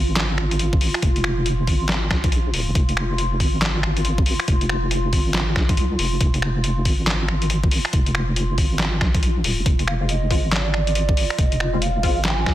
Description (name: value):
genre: deep dubstep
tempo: 139 BPM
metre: 4/4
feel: swing 62% on 16ths, half-time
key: F dorian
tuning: A4 = 440 Hz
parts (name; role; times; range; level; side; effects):
- granular cloud pad; sustained chords; 0.0-12.5 s; F4; -29 LUFS; equal; built-in reverb
- deep soft wobble bass; bass; 0.0-12.5 s; Eb1 to C2; -22 LUFS; equal; chorus
- trip hop sampler-style drum kit; drums; 0.2-12.5 s; finger snaps, handclaps, hi-hat, snare drum; -24 LUFS; left 1 dB; studio reverb, soft clipping on snare
- electronic kick drum; drums; 0.7-12.5 s; none; -20 LUFS; equal; overdrive, studio reverb
- mellow hollow ney; melody; 9.9-12.5 s; D5 to Ab5; -26 LUFS; right 6 dB; dub echo
- filtered dub chord stab; stabs; 10.0-12.2 s; Ab3 to F4; -30 LUFS; left 3 dB; phaser, ensemble chorus, dub echo
room: digital ambience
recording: dense, heavily limited modern master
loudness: -18 LUFS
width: side -14 dB against mid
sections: 0.0-12.5 A section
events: none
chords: 0.0 Fm